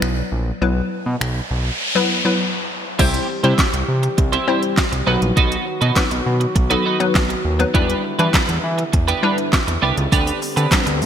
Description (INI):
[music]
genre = dance-pop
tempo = 101 BPM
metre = 4/4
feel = straight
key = unclear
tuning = A4 = 441 Hz
[part]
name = hollow square pluck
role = accompaniment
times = 0.0-11.1 s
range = F#3 to C5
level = -22 LUFS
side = left 3 dB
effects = chorus, sidechain pumping
[part]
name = fat analog bass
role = bass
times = 0.0-11.1 s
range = A#1 to E3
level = -20 LUFS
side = equal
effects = sidechain pumping
[part]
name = smooth R&B drum kit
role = drums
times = 0.0-11.1 s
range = crash cymbal, finger snaps, handclaps, hi-hat, kick drum, shaker, snare drum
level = -19 LUFS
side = equal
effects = gated reverb
[part]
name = noise sweep and swell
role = sound effects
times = 1.1-3.0, 10.1-11.1 s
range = none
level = -25 LUFS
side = left 1 dB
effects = none
[part]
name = dark brass ensemble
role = sustained chords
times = 3.0-11.1 s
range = D3 to G4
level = -27 LUFS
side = equal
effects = stereo widening, sidechain pumping
[part]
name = twelve-string electric guitar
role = riff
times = 3.0-10.9 s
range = B3 to C5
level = -22 LUFS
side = right 5 dB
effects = analog chorus
[sound]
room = moderate lush hall reverb, RT60 2.7 s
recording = bright 1980s-style digital production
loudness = -16 LUFS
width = side -9 dB against mid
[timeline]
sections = 0.0-3.0 A section; 3.0-11.1 B section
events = noise sweep 1.1-3.0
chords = 0.0 Bsus4; 3.0 C; 5.1 B; 7.7 Em7; 10.1 G/D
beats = 0.02 | 0.62 1.21 1.80 2.40 | 2.99 3.59 4.18 4.78 | 5.37 5.96 6.56 7.15 | 7.75 8.34 8.93 9.53 | 10.12 10.72